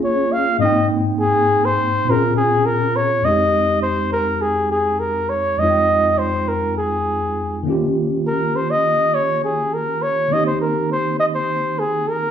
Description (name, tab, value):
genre	soul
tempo	102 BPM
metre	4/4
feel	straight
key	unclear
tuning	A4 = 438 Hz
part	warm flugelhorn	melody	0.0-12.3 s	Ab4 to F5	-18 LUFS	equal	none
part	mellow tine electric piano	accompaniment	0.0-12.3 s	F2 to G5	-21 LUFS	equal	medium stereo tremolo
room	wet large studio reverb, RT60 0.8 s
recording	band playing live in one room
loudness	-16 LUFS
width	side -9 dB against mid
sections	0.0-3.3 A section; 3.3-12.3 B section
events	none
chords	0.0 Bbm7; 0.6 Abmaj7; 2.1 Bbm7; 3.3 Fm9; 7.7 Eb7; 10.3 Cm7/Eb